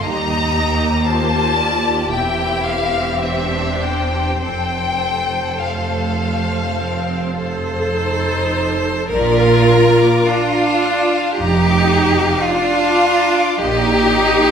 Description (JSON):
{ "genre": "classical, slow romantic movement for string orchestra", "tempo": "49-60 BPM", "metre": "4/4", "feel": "rubato", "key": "Bb major", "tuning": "A4 = 440 Hz", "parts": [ { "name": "warm studio violin section", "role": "melody", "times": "0.0-14.5 s", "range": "D5 to D6", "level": "-22 LUFS", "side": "left 4 dB", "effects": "none" }, { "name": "clear chamber violin section", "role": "second line", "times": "0.0-14.5 s", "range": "F4 to E5", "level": "-18 LUFS", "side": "left 1 dB", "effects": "none" }, { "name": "clear studio viola section", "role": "accompaniment", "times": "0.0-14.5 s", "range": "G3 to A4", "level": "-20 LUFS", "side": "right 2 dB", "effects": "none" }, { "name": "clear studio cello section", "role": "bass", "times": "0.0-14.5 s", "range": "Eb2 to Bb2", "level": "-23 LUFS", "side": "right 2 dB", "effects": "none" }, { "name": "rich studio double bass section", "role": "bass", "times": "0.0-14.5 s", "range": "E1 to Eb2", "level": "-23 LUFS", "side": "right 2 dB", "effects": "none" } ], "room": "wet scoring stage reverb, RT60 1.9 s", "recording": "minimal, uncompressed stereo recording", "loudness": "-14 LUFS", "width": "side -7 dB against mid", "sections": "0.0-9.1 A section; 9.1-14.5 B section", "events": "none", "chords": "0.1 Cm7/Eb; 2.1 C/E; 4.4 F; 9.1 Bb; 13.6 Cm7/Bb (rootless)" }